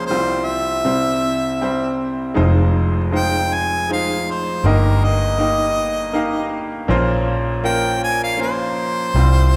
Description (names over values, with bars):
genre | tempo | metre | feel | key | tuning
folk | 80 BPM | 3/4 | straight | unclear | A4 = 440 Hz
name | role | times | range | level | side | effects
clear harmonica | melody | 0.0-9.6 s | Bb4 to Ab5 | -23 LUFS | equal | none
bright grand piano | accompaniment | 0.0-9.6 s | F1 to F5 | -23 LUFS | equal | none
vintage muted fingered electric bass | bass | 2.4-9.6 s | F1 to C2 | -20 LUFS | equal | none
room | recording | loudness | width
wet scoring stage reverb, RT60 1.6 s | recorded in a church or concert hall | -19 LUFS | mono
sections
0.0-9.6 A section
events
none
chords
0.1 Csus4; 0.9 C; 2.4 Fm7; 4.6 Eb/G; 6.9 Bbmadd9